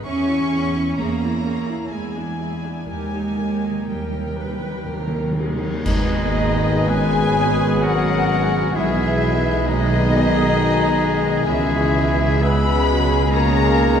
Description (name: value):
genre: classical, slow romantic movement for symphony orchestra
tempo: 56-68 BPM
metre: 3/4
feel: rubato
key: G# minor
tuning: A4 = 440 Hz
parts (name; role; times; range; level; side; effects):
- dark studio violin section; melody; 0.0-14.0 s; G4 to B5; -27 LUFS; left 4 dB; none
- rich chamber viola section; accompaniment; 0.0-14.0 s; F#3 to B4; -28 LUFS; equal; none
- warm chamber violin section; second line; 0.1-14.0 s; B3 to C#6; -29 LUFS; left 4 dB; none
- rich studio cello section; bass; 0.1-14.0 s; G#2 to C#4; -26 LUFS; right 2 dB; none
- rich symphonic double bass section; bass; 0.1-14.0 s; G#1 to E2; -24 LUFS; right 2 dB; none
- cymbal swell, clash cymbals and concert bass drum; percussion; 2.9-7.8 s; none; -27 LUFS; equal; none
- timpani; percussion; 2.9-5.8 s; D#3; -28 LUFS; equal; none
- dark French horn section; sustained chords; 5.8-14.0 s; D#3 to B3; -26 LUFS; left 3 dB; none
- bright clarinet; second line; 5.9-14.0 s; D#4 to B4; -27 LUFS; left 1 dB; none
- clear oboe; second line; 5.9-14.0 s; G#4 to E5; -28 LUFS; left 1 dB; none
- silver concert flute; second line; 5.9-14.0 s; D#5 to B5; -29 LUFS; left 2 dB; none
- warm trombone section; sustained chords; 5.9-14.0 s; B2 to G#3; -28 LUFS; right 2 dB; none
- dark trumpet section; stabs; 5.9-14.0 s; G#4; -26 LUFS; left 2 dB; none
- mellow tuba; bass; 5.9-14.0 s; G#1 to C#2; -24 LUFS; right 2 dB; none
room: wet concert hall reverb, RT60 2.5 s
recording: dark, warm production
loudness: -17 LUFS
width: side -8 dB against mid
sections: 0.0-5.9 A section; 5.9-14.0 B section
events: timpani fill 2.9-5.9; band accent 5.9-6.9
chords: 0.1 C#m/E; 1.9 E7; 2.9 D#; 5.9 G#m; 8.8 G#m/B; 11.5 C#m7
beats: | 0.07 1.00 1.94 | 2.91 3.90 4.89 | 5.86 6.89 7.83 | 8.75 9.67 10.56 | 11.47 12.43 13.32